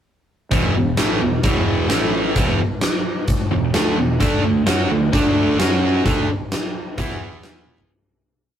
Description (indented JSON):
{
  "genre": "classic rock",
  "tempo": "130 BPM",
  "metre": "4/4",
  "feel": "straight",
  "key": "unclear",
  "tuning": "A4 = 440 Hz",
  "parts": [
    { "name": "distorted electric guitar", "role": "riff", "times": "0.5-7.9 s", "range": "E2 to F#4", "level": "-20 LUFS", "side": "right 4 dB", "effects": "overdrive" },
    { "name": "tight distorted guitar", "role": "riff", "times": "0.5-7.9 s", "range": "E2 to F#4", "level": "-24 LUFS", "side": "left 5 dB", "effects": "distortion" },
    { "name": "fuzz fingered electric bass", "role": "bass", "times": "0.5-7.9 s", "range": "E1 to F#2", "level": "-26 LUFS", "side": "equal", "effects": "overdrive" },
    { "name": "huge arena drum kit", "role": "drums", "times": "0.5-7.9 s", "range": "hi-hat, kick drum, snare drum, toms", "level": "-20 LUFS", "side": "left 1 dB", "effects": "none" }
  ],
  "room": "moderate studio ambience, RT60 0.5 s",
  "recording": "rough rehearsal-room recording",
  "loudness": "-16 LUFS",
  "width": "side -9 dB against mid",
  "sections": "0.5-7.9 riff",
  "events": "fade-out 6.1-7.9; drum fill 7.7",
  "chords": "0.5 E5; 1.9 A5; 2.4 E5; 4.2 D5; 5.6 F#5; 6.1 D5; 7.0 E5"
}